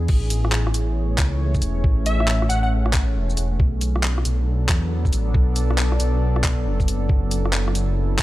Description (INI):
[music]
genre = future garage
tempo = 137 BPM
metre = 4/4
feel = swing 65% on 16ths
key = B dorian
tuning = A4 = 440 Hz
[part]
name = warbly tape-like pad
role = sustained chords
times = 0.0-8.2 s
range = E3 to D5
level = -28 LUFS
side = equal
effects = chorus, built-in reverb, vintage 12-bit sampler grit, sidechain pumping
[part]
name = dark detuned saw bass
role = bass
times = 0.0-8.2 s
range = E1 to E2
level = -21 LUFS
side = equal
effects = sidechain pumping
[part]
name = electronic kick drum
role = drums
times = 0.1-8.2 s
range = none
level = -20 LUFS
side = equal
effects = none
[part]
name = garage drum kit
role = drums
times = 0.1-8.2 s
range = crash cymbal, handclaps, hi-hat, rim click, shaker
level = -26 LUFS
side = equal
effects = none
[part]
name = plucky unison lead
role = melody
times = 2.1-2.7 s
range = E5 to F#5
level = -26 LUFS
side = left 1 dB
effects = analog delay
[sound]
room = light reverb, digital ambience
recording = none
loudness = -18 LUFS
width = side -16 dB against mid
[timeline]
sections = 0.0-8.2 A section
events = none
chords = 0.1 Amaj7; 3.6 Bm7; 7.1 F#m7